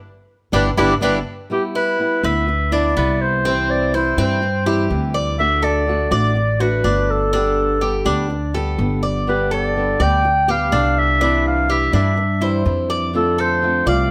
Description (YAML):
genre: latin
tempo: 124 BPM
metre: 4/4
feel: straight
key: unclear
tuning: A4 = 439 Hz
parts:
  - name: warm clarinet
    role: melody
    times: 0.5-14.1 s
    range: G4 to G5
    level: -22 LUFS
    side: equal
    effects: plate reverb
  - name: flamenco guitar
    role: accompaniment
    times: 0.5-14.1 s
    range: C3 to G4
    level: -26 LUFS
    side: equal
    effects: none
  - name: Cuban tres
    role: arpeggios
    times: 0.5-14.1 s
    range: B3 to D5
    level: -25 LUFS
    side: equal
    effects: none
  - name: upright bass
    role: bass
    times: 0.5-14.1 s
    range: G1 to G2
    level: -23 LUFS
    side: equal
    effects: none
room: light reverb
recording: none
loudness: -18 LUFS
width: mono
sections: 0.0-1.5 A section; 1.5-14.1 B section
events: band accent 0.0-1.5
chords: 0.0 G6; 3.4 C; 5.4 D; 7.3 Gadd9; 11.2 Cadd9; 13.1 F6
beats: 0.05 0.53 1.02 | 1.50 1.99 2.48 2.96 | 3.45 3.94 4.42 4.91 | 5.39 5.88 6.36 6.85 | 7.33 7.82 8.30 8.79 | 9.27 9.76 10.24 10.72 | 11.21 11.69 12.18 12.66 | 13.15 13.63